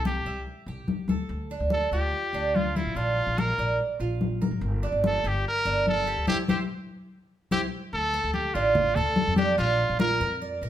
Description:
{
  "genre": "latin, Cuban son and guajira",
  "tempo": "145 BPM",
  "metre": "4/4",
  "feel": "straight",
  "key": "D minor",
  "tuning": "A4 = 439 Hz",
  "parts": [
    { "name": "brilliant trumpet", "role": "melody", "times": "0.0-10.4 s", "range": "E4 to Bb4", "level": "-28 LUFS", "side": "left 1 dB", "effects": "none" },
    { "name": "Cuban tres", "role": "arpeggios", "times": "0.0-10.7 s", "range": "D4 to E5", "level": "-29 LUFS", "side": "right 4 dB", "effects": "none" },
    { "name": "upright bass", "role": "bass", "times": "0.0-10.7 s", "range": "G1 to F2", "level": "-30 LUFS", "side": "equal", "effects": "none" },
    { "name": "congas", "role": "percussion", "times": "0.1-10.7 s", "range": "none", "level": "-29 LUFS", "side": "left 3 dB", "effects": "none" }
  ],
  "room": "moderate large studio reverb, RT60 1.2 s",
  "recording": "band playing live in one room",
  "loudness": "-24 LUFS",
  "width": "side -11 dB against mid",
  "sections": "0.0-7.9 A section; 7.9-10.7 B section",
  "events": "band accent 6.3-7.9; drum fill 7.3-7.9",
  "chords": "0.0 C; 1.3 Dm; 3.0 Bb; 4.6 Gm; 6.3 C; 7.9 Dm; 9.6 Bb",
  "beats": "0.06 0.47 0.88 | 1.30 1.71 2.13 2.54 | 2.96 3.37 3.79 4.20 | 4.62 5.03 5.45 5.86 | 6.28 6.69 7.10 7.52 | 7.93 8.35 8.76 9.17 | 9.59 10.00 10.41"
}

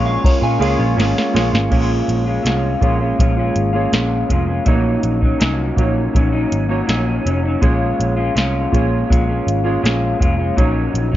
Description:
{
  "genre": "indie pop, bedroom pop",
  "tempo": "81 BPM",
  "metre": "4/4",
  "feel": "straight",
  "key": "Bb minor",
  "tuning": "A4 = 439 Hz",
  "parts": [
    { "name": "electric guitar through a small old amp", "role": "accompaniment", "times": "0.0-11.2 s", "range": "Bb2 to F4", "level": "-20 LUFS", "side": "left 3 dB", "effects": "analog chorus, warbly pitch drift" },
    { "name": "warbly lo-fi synth keys", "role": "accompaniment", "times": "0.0-11.2 s", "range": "A3 to Db5", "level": "-22 LUFS", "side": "right 4 dB", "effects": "chorus" },
    { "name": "warbly tape-like pad", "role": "sustained chords", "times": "0.0-1.7 s", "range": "Bb4 to Db6", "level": "-30 LUFS", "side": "left 4 dB", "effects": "chorus, built-in reverb" },
    { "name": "vintage muted picked electric bass", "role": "bass", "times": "0.0-11.2 s", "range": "F1 to Bb2", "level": "-20 LUFS", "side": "equal", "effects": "none" },
    { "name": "soft synth bell", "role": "second line", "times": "0.1-1.7 s", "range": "F4 to Db6", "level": "-25 LUFS", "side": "right 2 dB", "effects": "phaser, lush chorus, tape echo" },
    { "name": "soft vintage rhythm box", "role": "drums", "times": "0.2-11.2 s", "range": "crash cymbal, hi-hat, kick drum, ride cymbal, snare drum", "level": "-18 LUFS", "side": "equal", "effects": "none" }
  ],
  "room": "light reverb",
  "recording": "worn, warbling old tape, cassette tape, warbly pitch drift, nothing above 7.5 kHz",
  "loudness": "-14 LUFS",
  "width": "side -13 dB against mid",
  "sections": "0.0-1.7 A section; 1.7-11.2 B section",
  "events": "drum fill 1.0-1.7",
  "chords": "0.0 Bbm7; 4.7 Gb6/Bb; 7.6 Bbm7; 10.6 Gb6/Bb",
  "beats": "0.24 0.97 | 1.71 2.45 3.19 3.92 | 4.66 5.40 6.14 6.88 | 7.62 8.36 9.10 9.84 | 10.58"
}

